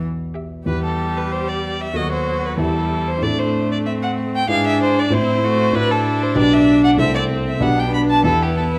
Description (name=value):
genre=quick classical-period movement for piano quartet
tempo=95 BPM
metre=2/4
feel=straight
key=E minor, G major from 5.7 s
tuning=A4 = 438 Hz
part: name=dark concert grand piano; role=accompaniment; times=0.0-8.8 s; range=B1 to C5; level=-23 LUFS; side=equal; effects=none
part: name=rich viola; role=accompaniment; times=0.3-8.8 s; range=F#3 to G4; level=-26 LUFS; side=equal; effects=none
part: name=rich violin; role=melody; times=0.4-8.8 s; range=G4 to B5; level=-24 LUFS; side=equal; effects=none
part: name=warm cello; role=second line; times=0.7-8.8 s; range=C4 to G#4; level=-26 LUFS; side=equal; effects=none
room=moderate recital hall reverb, RT60 1.4 s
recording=close, detailed microphones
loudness=-18 LUFS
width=mono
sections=0.7-8.8 A section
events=none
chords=0.0 Em; 2.0 B7/D#; 2.6 Em; 3.2 Am; 4.5 E7/G#; 5.1 Am; 5.7 D7/A; 6.4 G/B; 7.0 Am/C; 7.6 G/B; 8.2 Em